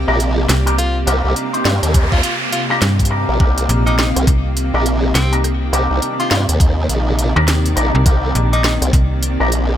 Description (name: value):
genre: glitch hop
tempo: 103 BPM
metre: 4/4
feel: swing 61% on 16ths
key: C minor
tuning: A4 = 440 Hz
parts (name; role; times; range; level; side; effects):
- rich studio string section; sustained chords; 0.0-9.8 s; C3 to G4; -26 LUFS; equal; sidechain pumping
- slap-like FM bass; bass; 0.0-9.4 s; Bb1 to G2; -16 LUFS; equal; none
- granular cloud pad; texture; 0.0-9.8 s; C4 to G5; -24 LUFS; equal; built-in reverb, lush chorus, sidechain pumping
- electric guitar with an envelope filter; stabs; 0.1-9.5 s; D4 to C5; -22 LUFS; left 1 dB; sidechain pumping, ping-pong delay
- formant-sweep wobble bass; bass; 0.1-9.8 s; Bb1 to G2; -16 LUFS; equal; chorus
- drum and bass drum kit; drums; 0.2-9.8 s; hi-hat, rim click, snare drum; -20 LUFS; equal; none
- edgy tenor saxophone; melody; 0.8-8.8 s; C4 to F4; -26 LUFS; left 1 dB; vintage 12-bit sampler grit, ping-pong delay
- noise sweep; sound effects; 1.7-3.4 s; none; -24 LUFS; right 2 dB; none
- electronic kick drum; drums; 1.9-9.1 s; none; -14 LUFS; equal; none
room: light reverb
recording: bright 1980s-style digital production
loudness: -13 LUFS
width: side -11 dB against mid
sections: 0.0-9.8 A section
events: noise sweep 1.7-3.4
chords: 0.0 Cm7